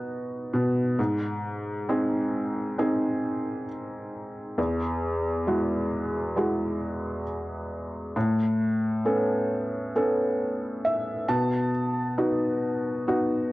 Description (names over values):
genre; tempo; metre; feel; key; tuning
pop; 67 BPM; 4/4; straight; E major; A4 = 440 Hz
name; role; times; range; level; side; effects
felt-muted upright piano; solo; 0.0-13.5 s; E2 to A5; -25 LUFS; equal; cassette tape
room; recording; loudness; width
moderate spring reverb, RT60 1.2 s; home recording on cassette; -24 LUFS; side -18 dB against mid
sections
0.0-13.5 A section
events
felt piano fill 10.4-11.7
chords
0.0 B; 1.0 G#; 4.6 Eadd9; 8.2 Aadd9; 11.3 B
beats
0.10 | 0.99 1.89 2.78 3.68 | 4.57 5.47 6.36 7.26 | 8.15 9.05 9.95 10.84 | 11.74 12.63